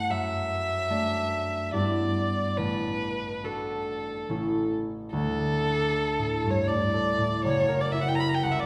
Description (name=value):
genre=classical, romantic duo for violin and harp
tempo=70-81 BPM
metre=3/4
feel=rubato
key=D major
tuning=A4 = 439 Hz
part: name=rich violin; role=melody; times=0.0-8.7 s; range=A4 to B5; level=-30 LUFS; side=equal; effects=none
part: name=concert harp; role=accompaniment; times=0.0-8.7 s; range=F#1 to D5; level=-30 LUFS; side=equal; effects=none
room=wet recital hall reverb, RT60 1.5 s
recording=heard from further back in the room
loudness=-27 LUFS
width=mono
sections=0.0-5.1 A section; 5.1-8.7 B section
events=none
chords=0.1 D/F#; 1.7 Em7/G; 2.6 D/A; 4.3 A; 5.1 D5; 7.4 F#7